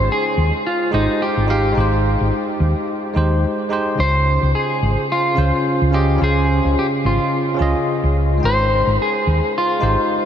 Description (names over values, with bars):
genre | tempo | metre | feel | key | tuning
sunset chillout | 108 BPM | 4/4 | swing 57% on 16ths | Db lydian | A4 = 440 Hz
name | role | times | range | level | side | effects
clean electric guitar | melody | 0.0-10.3 s | Eb4 to C5 | -20 LUFS | equal | diffuse ambient delay
bell-like tine electric piano | accompaniment | 0.0-10.3 s | Db3 to G5 | -21 LUFS | equal | auto-pan, diffuse ambient delay
hollow-body short-scale fingered electric bass | bass | 0.0-9.9 s | Ab1 to Eb2 | -17 LUFS | equal | none
room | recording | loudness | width
wet huge ambient reverb, RT60 8.1 s | dreamy mix soaked in reverb | -15 LUFS | side -9 dB against mid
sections
0.0-10.3 A section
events
none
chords
0.0 Abmaj7; 4.0 Dbmaj7; 8.4 Abmaj7